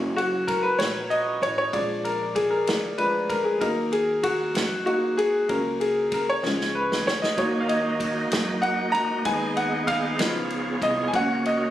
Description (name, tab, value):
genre	slow gospel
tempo	64 BPM (dotted quarters)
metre	6/8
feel	straight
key	F# major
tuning	A4 = 439 Hz
part	clear grand piano	accompaniment	0.0-11.7 s	E#3 to A#5	-23 LUFS	left 1 dB	none
part	upright bass	bass	0.0-11.7 s	F#1 to F#2	-36 LUFS	right 1 dB	none
part	natural country drum kit	drums	0.2-11.6 s	kick drum, ride cymbal, snare drum	-32 LUFS	equal	none
part	bright tonewheel organ	sustained chords	7.4-11.7 s	A#3 to D#5	-27 LUFS	right 2 dB	slow rotary speaker, chorus vibrato
room	light reverb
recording	recorded on a phone in the room, studio reverb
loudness	-22 LUFS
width	side -12 dB against mid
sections	0.0-11.7 A section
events	grand piano solo 0.0-11.7; drum fill 6.4-7.4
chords	0.0 F#; 1.7 A#7; 3.6 D#m; 5.5 F#/C#; 6.4 C#; 7.4 D#m; 9.3 G#m/D#; 10.2 C#7; 11.1 F#/C#